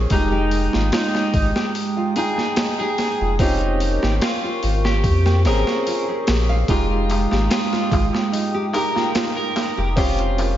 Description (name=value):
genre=trip hop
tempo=73 BPM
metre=4/4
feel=straight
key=F minor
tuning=A4 = 439 Hz
part: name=felt-muted upright piano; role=accompaniment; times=0.0-10.6 s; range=Ab3 to G5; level=-26 LUFS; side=equal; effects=tremolo, tape echo
part: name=dark analog pad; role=sustained chords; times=0.0-10.6 s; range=Ab3 to Eb6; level=-27 LUFS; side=right 2 dB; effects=chorus
part: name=warm sub bass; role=bass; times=0.0-10.6 s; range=F1 to F2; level=-20 LUFS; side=equal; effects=none
part: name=electric guitar at the edge of break-up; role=melody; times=0.1-10.6 s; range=Eb4 to Bb4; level=-25 LUFS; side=equal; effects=tape echo
part: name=nylon-string guitar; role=arpeggios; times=0.1-10.6 s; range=Eb4 to F5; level=-29 LUFS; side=equal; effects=vintage 12-bit sampler grit, tape echo
part: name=boom bap sampler-style drum kit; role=drums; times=0.1-10.6 s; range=hi-hat, kick drum, snare drum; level=-23 LUFS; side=equal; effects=overdrive
part: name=darbuka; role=percussion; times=6.7-10.6 s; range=none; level=-33 LUFS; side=left 2 dB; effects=none
room=moderate lush hall reverb, RT60 2.0 s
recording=dreamy mix soaked in reverb, nothing above 7.5 kHz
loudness=-17 LUFS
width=side -12 dB against mid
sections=0.0-10.6 A section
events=none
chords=0.1 Fm9; 3.4 Bbm7/F; 6.7 Fm9; 10.0 Bbm/F